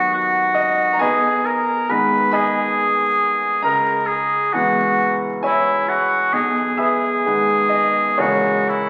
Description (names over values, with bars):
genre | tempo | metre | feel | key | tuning
classical, romantic duo for oboe and grand piano | 57-69 BPM | 3/4 | rubato | G# minor | A4 = 440 Hz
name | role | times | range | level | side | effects
warm oboe | melody | 0.0-8.9 s | E4 to B4 | -20 LUFS | equal | none
clear baby grand piano | accompaniment | 0.0-8.9 s | B1 to B5 | -23 LUFS | equal | none
room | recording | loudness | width
wet recital hall reverb, RT60 1.8 s | very old 78 rpm record, vinyl crackle | -18 LUFS | mono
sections
0.0-8.9 A section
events
none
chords
0.0 B/D#; 1.0 G#m/B; 3.6 C#m7; 6.3 G#m/B; 8.2 A#m7b5/C#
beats
0.13 | 1.01 1.89 2.77 | 3.64 4.53 5.44 | 6.34 7.25 8.19